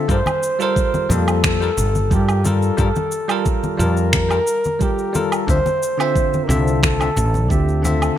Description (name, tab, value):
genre	sunset chillout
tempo	89 BPM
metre	4/4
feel	straight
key	unclear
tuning	A4 = 439 Hz
part	breathy flugelhorn	melody	0.0-8.2 s	G4 to C5	-22 LUFS	equal	digital delay
part	bell-like tine electric piano	accompaniment	0.0-8.2 s	D3 to A5	-22 LUFS	moving between left 6 dB and right 8 dB	auto-pan
part	woody fretless electric bass	bass	0.1-8.1 s	G1 to G2	-19 LUFS	equal	none
part	electronic kick drum	drums	0.1-7.6 s	none	-21 LUFS	equal	studio reverb
part	electronic shaker, woodblock and finger snaps	drums	0.1-8.2 s	none	-24 LUFS	right 2 dB	studio reverb
part	congas	percussion	0.3-8.0 s	none	-27 LUFS	left 2 dB	none
room	moderate plate reverb, RT60 2.1 s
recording	bright 1980s-style digital production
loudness	-16 LUFS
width	side -11 dB against mid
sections	0.0-8.2 A section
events	none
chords	0.1 Gm9; 5.5 Dm9